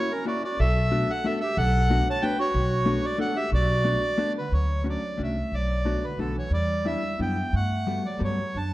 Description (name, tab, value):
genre	musette waltz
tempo	181 BPM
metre	3/4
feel	rubato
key	B minor, D major from 4.5 s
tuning	A4 = 440 Hz
part	accordion	melody	0.0-8.7 s	A4 to A5	-28 LUFS	equal	none
part	warm clarinet	second line	0.0-8.7 s	D3 to C#5	-32 LUFS	right 3 dB	none
part	hollow-body jazz guitar	accompaniment	0.0-8.4 s	G3 to F#4	-30 LUFS	left 2 dB	none
part	upright bass	bass	0.6-8.7 s	B1 to G2	-25 LUFS	equal	none
room	moderate recital hall reverb, RT60 1.5 s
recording	dark, warm production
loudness	-23 LUFS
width	side -16 dB against mid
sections	0.0-4.5 A section; 4.5-8.7 B section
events	none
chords	0.0 F#7; 0.6 Bm7; 4.5 Dmaj7; 5.5 Bm7; 6.5 Em7; 7.5 Gmaj9